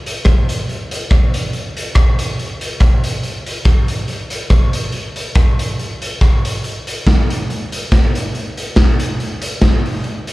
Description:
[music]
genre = ska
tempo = 141 BPM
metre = 4/4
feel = swing 54% on 8ths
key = none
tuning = none
[part]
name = raw garage drum kit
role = drums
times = 0.1-10.3 s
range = hi-hat, kick drum, rim click, snare drum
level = -14 LUFS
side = equal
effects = none
[sound]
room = light reverb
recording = live gig heard through the venue's PA, club reverb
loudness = -14 LUFS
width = side -19 dB against mid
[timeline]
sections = 0.0-10.3 A section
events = none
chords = none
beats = 0.26 0.69 1.11 | 1.53 1.96 2.38 2.81 | 3.23 3.66 4.08 4.51 | 4.93 5.36 5.78 6.21 | 6.64 7.06 7.49 7.91 | 8.34 8.77 9.19 9.62 | 10.04

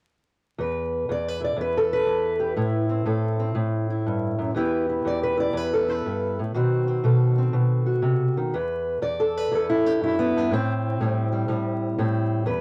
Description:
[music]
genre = acoustic country blues, solo or duo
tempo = 121 BPM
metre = 4/4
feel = swing 65% on 8ths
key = E harmonic minor, E minor from 8.5 s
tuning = A4 = 440 Hz
[part]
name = fingerpicked steel-string acoustic guitar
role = solo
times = 0.6-12.6 s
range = E2 to D5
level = -24 LUFS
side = equal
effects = cassette tape
[sound]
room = moderate small room reverb, RT60 0.5 s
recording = home recording on cassette, vinyl crackle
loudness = -24 LUFS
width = mono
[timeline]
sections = 0.6-8.5 A section; 8.5-12.6 B section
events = none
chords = 0.6 E5; 2.6 Am; 4.6 Em; 6.6 B7b9; 8.5 Em7; 10.5 Am7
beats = | 0.60 1.10 1.60 2.09 | 2.59 3.09 3.58 4.08 | 4.57 5.07 5.57 6.06 | 6.56 7.05 7.55 8.04 | 8.54 9.03 9.53 10.02 | 10.52 11.01 11.50 12.00 | 12.49

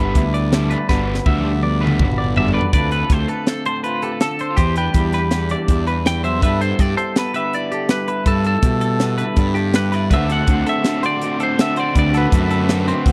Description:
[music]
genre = math rock and midwest emo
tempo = 163 BPM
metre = 5/4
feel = straight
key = G major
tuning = A4 = 440 Hz
[part]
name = electric guitar through a small old amp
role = accompaniment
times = 0.0-13.1 s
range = G2 to D5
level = -28 LUFS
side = equal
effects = none
[part]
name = twelve-string electric guitar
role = arpeggios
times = 0.0-13.1 s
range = C4 to E5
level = -28 LUFS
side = equal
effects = none
[part]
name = overdriven semi-hollow guitar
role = riff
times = 0.0-2.6, 10.1-13.1 s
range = D3 to F#4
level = -25 LUFS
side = equal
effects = none
[part]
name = fuzz fingered electric bass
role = bass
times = 0.0-13.1 s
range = G1 to B2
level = -22 LUFS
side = equal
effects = overdrive
[part]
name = crisp fusion drum kit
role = drums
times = 0.1-13.1 s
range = hi-hat, kick drum, snare drum, toms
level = -20 LUFS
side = equal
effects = none
[part]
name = twelve-string electric guitar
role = melody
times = 2.4-13.1 s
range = G4 to G5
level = -25 LUFS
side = equal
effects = slapback echo
[sound]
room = studio ambience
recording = dry, close 1970s-style studio recording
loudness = -18 LUFS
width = mono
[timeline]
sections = 0.0-2.7 A section; 2.7-13.1 B section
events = drum fill 0.9-2.7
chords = 0.0 G6; 0.9 Gmaj7; 2.7 Dm7; 4.6 Cmaj9/E; 6.4 G69; 10.1 D13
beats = 0.15 0.52 | 0.89 1.26 1.63 2.00 2.37 | 2.74 3.11 3.48 3.85 4.21 | 4.58 4.95 5.32 5.69 6.06 | 6.43 6.80 7.17 7.53 7.90 | 8.27 8.64 9.01 9.38 9.75 | 10.12 10.48 10.85 11.22 11.59 | 11.96 12.33 12.70 13.07

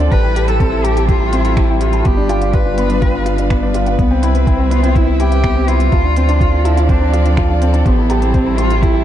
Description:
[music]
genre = piano and strings electronica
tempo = 124 BPM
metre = 4/4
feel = straight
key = D dorian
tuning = A4 = 440 Hz
[part]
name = rich studio string section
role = sustained chords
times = 0.0-9.0 s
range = F3 to F5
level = -24 LUFS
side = left 2 dB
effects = sidechain pumping
[part]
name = felt-muted upright piano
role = riff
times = 0.0-9.0 s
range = B3 to G4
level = -19 LUFS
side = equal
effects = ping-pong delay
[part]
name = warm sub bass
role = bass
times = 0.0-9.0 s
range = G1 to D2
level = -15 LUFS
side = equal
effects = sidechain pumping
[part]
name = dark cello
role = melody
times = 0.1-9.0 s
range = B3 to B4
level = -20 LUFS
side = equal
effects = ping-pong delay
[part]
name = warbly dusty pluck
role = arpeggios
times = 0.1-9.0 s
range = D5 to C6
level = -27 LUFS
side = left 1 dB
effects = lush chorus, sidechain pumping, ping-pong delay
[part]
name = electronic kick drum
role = drums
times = 0.1-8.9 s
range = none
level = -15 LUFS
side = equal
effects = none
[part]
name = organic electronic drum kit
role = drums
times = 0.1-8.9 s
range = finger snaps, hi-hat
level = -32 LUFS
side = right 2 dB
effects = none
[sound]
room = light reverb, small room ambience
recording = none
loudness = -11 LUFS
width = side -11 dB against mid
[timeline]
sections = 0.0-9.0 A section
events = none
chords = 0.1 Am7; 2.1 G7; 4.0 Cmaj7; 5.9 Dm7; 7.9 Am7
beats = | 0.12 0.60 1.08 1.57 | 2.05 2.54 3.02 3.50 | 3.99 4.47 4.96 5.44 | 5.92 6.41 6.89 7.38 | 7.86 8.34 8.83

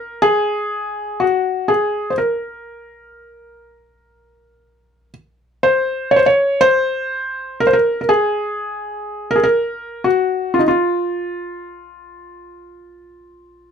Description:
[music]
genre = arabic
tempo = 122 BPM (eighths)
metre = 10/8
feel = straight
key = F maqam kurd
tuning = A4 = 442 Hz
[part]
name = felt-muted upright piano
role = solo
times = 0.0-13.7 s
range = Eb4 to Db5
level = -16 LUFS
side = left 1 dB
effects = none
[sound]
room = light reverb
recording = close, detailed microphones, faint mains hum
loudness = -15 LUFS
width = side -7 dB against mid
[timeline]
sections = 0.0-13.7 A section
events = none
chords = none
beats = 0.21 | 0.70 1.20 1.69 2.18 2.67 3.17 3.66 4.15 4.64 5.13 | 5.62 6.12 6.61 7.10 7.59 8.09 8.58 9.07 9.56 10.05 | 10.54 11.04 11.53 12.02 12.51 13.00 13.49

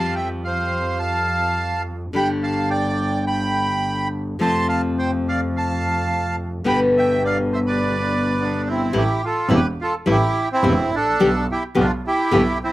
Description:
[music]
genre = tango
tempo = 106 BPM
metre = 4/4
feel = rubato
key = A minor from 8.9 s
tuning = A4 = 440 Hz
[part]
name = bandoneon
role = melody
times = 0.0-12.7 s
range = B3 to C6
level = -22 LUFS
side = right 2 dB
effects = slapback echo
[part]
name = nylon-string guitar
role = accompaniment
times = 0.0-12.4 s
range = B2 to G4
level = -22 LUFS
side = left 2 dB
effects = none
[part]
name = clear double bass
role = bass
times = 0.0-12.6 s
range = E1 to F2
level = -24 LUFS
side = right 1 dB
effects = none
[sound]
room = little or no reverb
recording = recorded outdoors, with no room sound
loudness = -18 LUFS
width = side -16 dB against mid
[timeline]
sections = 0.0-8.9 A section; 8.9-12.7 B section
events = none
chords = 0.0 Fadd9; 2.1 G5; 4.4 F; 6.7 G; 8.9 Am7; 11.2 G/B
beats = 0.44 1.01 1.58 | 2.15 2.71 3.28 3.84 | 4.40 4.97 5.53 6.09 | 6.66 7.22 7.79 8.36 | 8.93 9.50 10.07 10.64 | 11.20 11.77 12.33

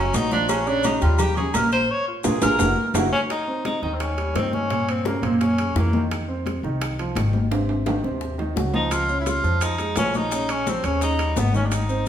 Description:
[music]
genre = Afro-Cuban jazz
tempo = 171 BPM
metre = 4/4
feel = straight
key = unclear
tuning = A4 = 440 Hz
[part]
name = clear tenor saxophone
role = melody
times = 0.0-6.0, 8.7-12.1 s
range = Bb3 to Db5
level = -24 LUFS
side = left 1 dB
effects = none
[part]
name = warm grand piano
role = accompaniment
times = 0.0-12.1 s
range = Bb2 to Db6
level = -26 LUFS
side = right 2 dB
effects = none
[part]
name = upright bass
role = bass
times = 0.0-12.1 s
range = Gb1 to G2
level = -25 LUFS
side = left 1 dB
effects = none
[part]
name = congas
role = percussion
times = 0.1-12.1 s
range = none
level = -29 LUFS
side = left 2 dB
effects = none
[part]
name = cowbell and bongos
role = percussion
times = 0.1-11.9 s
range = none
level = -34 LUFS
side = left 2 dB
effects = none
[part]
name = maracas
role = percussion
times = 0.1-3.0, 8.9-12.1 s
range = none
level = -35 LUFS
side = left 5 dB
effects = none
[part]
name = timbales and agogo bells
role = percussion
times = 0.1-11.9 s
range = none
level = -30 LUFS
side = right 3 dB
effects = none
[sound]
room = wet large studio reverb, RT60 1.2 s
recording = band playing live in one room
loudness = -20 LUFS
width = side -10 dB against mid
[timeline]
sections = 0.0-3.3 A section; 3.3-12.1 B section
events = tenor saxophone solo 0.0-3.3; band accent 1.9-3.3; drum fill 2.4-3.3, 7.5-8.9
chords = 0.5 Bbm; 1.2 Eb7; 1.9 Bb5; 2.6 Gb7; 3.3 Eb6; 4.7 Gdim; 5.4 Gb7; 6.1 Fm7; 7.5 Ab7; 8.9 Dbadd9; 10.3 Bbm; 11.0 Ebaug7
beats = 0.14 | 0.49 0.84 1.19 1.54 | 1.90 2.25 2.60 2.95 | 3.30 3.65 4.00 4.35 | 4.70 5.05 5.41 5.76 | 6.11 6.46 6.81 7.16 | 7.51 7.86 8.21 8.56 | 8.91 9.27 9.62 9.97 | 10.32 10.67 11.02 11.37 | 11.72 12.07

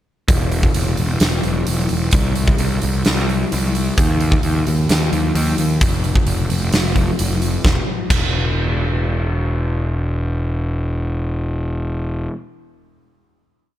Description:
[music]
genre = quiet-loud alternative rock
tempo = 131 BPM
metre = 4/4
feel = straight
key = unclear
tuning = A4 = 440 Hz
[part]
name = fuzz picked electric bass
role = bass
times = 0.3-12.3 s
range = E1 to D#2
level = -19 LUFS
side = equal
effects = overdrive
[part]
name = huge arena drum kit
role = drums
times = 0.3-8.2 s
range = crash cymbal, hi-hat, kick drum, snare drum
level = -18 LUFS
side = equal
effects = none
[sound]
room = little or no reverb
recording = none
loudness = -16 LUFS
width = side -12 dB against mid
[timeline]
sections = 0.3-7.6 verse; 7.6-11.3 final note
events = none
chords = none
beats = | 0.29 0.75 1.22 1.68 | 2.14 2.60 3.06 3.52 | 3.98 4.44 4.90 5.36 | 5.81 6.27 6.73 7.19 | 7.64 8.10 8.56 9.02 | 9.48 9.93 10.39 10.85

